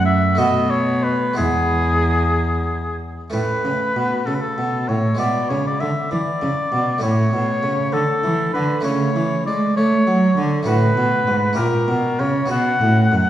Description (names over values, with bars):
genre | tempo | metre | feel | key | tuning
classical, baroque-style sonata movement with continuo | 60-67 BPM (dotted quarters) | 6/8 | rubato | E major, A major from 3.3 s | A4 = 441 Hz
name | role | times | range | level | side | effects
warm oboe | melody | 0.0-13.3 s | G#4 to F#5 | -21 LUFS | left 1 dB | none
harpsichord | accompaniment | 0.0-13.3 s | E2 to A4 | -24 LUFS | right 2 dB | none
rich cello | bass | 0.0-13.2 s | E2 to A3 | -20 LUFS | right 1 dB | none
room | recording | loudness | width
wet recital hall reverb, RT60 1.5 s | heard from further back in the room, nothing above 11.0 kHz | -16 LUFS | side -12 dB against mid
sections
0.0-3.3 A section; 3.3-13.3 A section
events
none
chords
0.4 B5; 1.4 E; 3.3 A; 5.2 E7/B; 7.0 A; 8.9 A/C#; 10.7 F#m/A; 11.6 A#dim7; 12.5 B